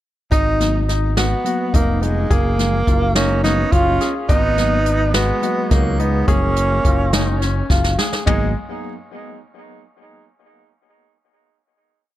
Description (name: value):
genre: progressive instrumental, band music in an uneven meter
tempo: 211 BPM (eighths)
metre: 7/8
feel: straight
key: G# dorian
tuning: A4 = 439 Hz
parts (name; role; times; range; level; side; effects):
- breathy tenor saxophone; melody; 0.3-8.5 s; G#3 to E#4; -21 LUFS; right 2 dB; tape echo
- clear grand piano; arpeggios; 0.3-8.5 s; G#3 to G#4; -25 LUFS; left 6 dB; none
- modern bright fingered electric bass; bass; 0.3-8.5 s; E#1 to C#2; -19 LUFS; equal; none
- jazz brush drum kit; drums; 0.3-8.4 s; hi-hat, kick drum, snare drum, toms; -19 LUFS; equal; none
- tine electric piano; accompaniment; 0.6-8.5 s; E#3 to B3; -28 LUFS; left 3 dB; overdrive, fast stereo tremolo, tape echo
- warm alto saxophone; second line; 3.2-8.5 s; F#3 to D#4; -27 LUFS; right 4 dB; tape echo
room: light reverb, small room reverb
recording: echo-heavy mix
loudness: -15 LUFS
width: side -14 dB against mid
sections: 0.3-8.3 groove; 8.3-10.3 final chord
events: drum fill 7.7-8.3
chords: 0.3 G#m7; 2.3 F#maj9; 4.3 G#m7; 6.3 F#maj9; 8.3 G#m7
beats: | 0.32 0.60 0.88 1.17 1.45 1.74 2.02 | 2.31 2.59 2.87 3.16 3.44 3.73 4.01 | 4.29 4.58 4.86 5.14 5.43 5.71 6.00 | 6.28 6.56 6.85 7.13 7.42 7.70 7.98 | 8.27